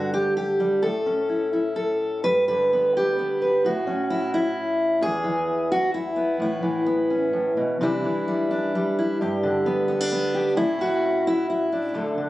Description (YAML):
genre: folk, solo fingerstyle acoustic guitar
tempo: 130 BPM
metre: 3/4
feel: rubato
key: unclear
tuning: A4 = 440 Hz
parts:
  - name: fingerpicked steel-string acoustic guitar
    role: solo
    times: 0.0-12.3 s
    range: D2 to B4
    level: -21 LUFS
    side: equal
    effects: none
room: light reverb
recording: recorded on a phone in the room, club reverb, compression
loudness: -21 LUFS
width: side -16 dB against mid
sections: 0.0-2.2 A section; 2.2-12.3 B section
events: none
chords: 0.0 G5; 0.8 A; 2.2 G; 3.6 A; 5.0 E; 6.4 Aadd9; 7.8 Cadd9; 9.2 G; 10.6 A